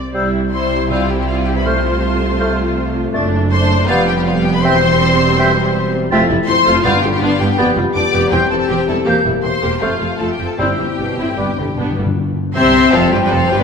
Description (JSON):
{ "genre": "classical, dramatic, fast romantic movement for symphony orchestra", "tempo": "160 BPM", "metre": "4/4", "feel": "rubato", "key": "C major", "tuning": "A4 = 440 Hz", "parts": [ { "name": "rich symphonic viola section", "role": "accompaniment", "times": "0.0-13.6 s", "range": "C3 to D5", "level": "-20 LUFS", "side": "right 1 dB", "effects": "none" }, { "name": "small flute group", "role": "second line", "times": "0.1-11.6 s", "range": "D6 to A6", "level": "-24 LUFS", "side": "right 2 dB", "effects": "none" }, { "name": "warm clarinet", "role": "second line", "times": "0.1-13.6 s", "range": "F4 to E5", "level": "-25 LUFS", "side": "left 2 dB", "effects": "none" }, { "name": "mellow bassoon", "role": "accompaniment", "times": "0.1-13.6 s", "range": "G3 to C4", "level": "-24 LUFS", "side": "equal", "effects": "none" }, { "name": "dark French horn section", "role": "sustained chords", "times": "0.1-13.6 s", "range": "F3 to G4", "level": "-21 LUFS", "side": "left 5 dB", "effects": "none" }, { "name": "rich symphonic cello section", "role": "bass", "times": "0.1-13.6 s", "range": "E2 to C3", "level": "-23 LUFS", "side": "right 2 dB", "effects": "none" }, { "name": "rich symphonic double bass section", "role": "bass", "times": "0.1-13.6 s", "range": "E1 to C2", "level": "-20 LUFS", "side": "right 4 dB", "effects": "none" }, { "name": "rich studio violin section", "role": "melody", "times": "0.5-13.6 s", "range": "F5 to D6", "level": "-20 LUFS", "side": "left 4 dB", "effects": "none" }, { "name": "rich symphonic violin section", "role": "second line", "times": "0.5-13.6 s", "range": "F4 to E5", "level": "-22 LUFS", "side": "left 4 dB", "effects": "none" }, { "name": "timpani", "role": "percussion", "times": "0.9-2.2, 6.8-7.4, 10.6-12.1 s", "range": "G2 to C3", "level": "-24 LUFS", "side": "left 2 dB", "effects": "none" } ], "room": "wet concert hall reverb, RT60 2.1 s", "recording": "none", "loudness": "-13 LUFS", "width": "side -6 dB against mid", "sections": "0.1-12.2 A section; 12.2-13.6 A section", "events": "timpani fill 11.4-12.2", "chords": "0.1 C; 1.7 F/C; 3.1 D7/F#; 3.9 G7/F; 4.6 C/E; 6.1 Fmaj7; 6.9 G; 7.6 G7/F; 8.3 C/E; 9.1 C7/E; 9.8 F; 10.6 C/G; 11.4 G; 12.2 C; 12.9 C5", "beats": "| 0.14 0.52 0.91 1.28 | 1.66 2.03 2.40 2.77 | 3.14 3.52 3.89 4.26 | 4.64 5.02 5.39 5.75 | 6.12 6.49 6.85 7.22 | 7.58 7.95 8.32 8.70 | 9.07 9.44 9.82 10.20 | 10.59 10.99 11.38 11.78 | 12.18 12.56 12.94 13.32" }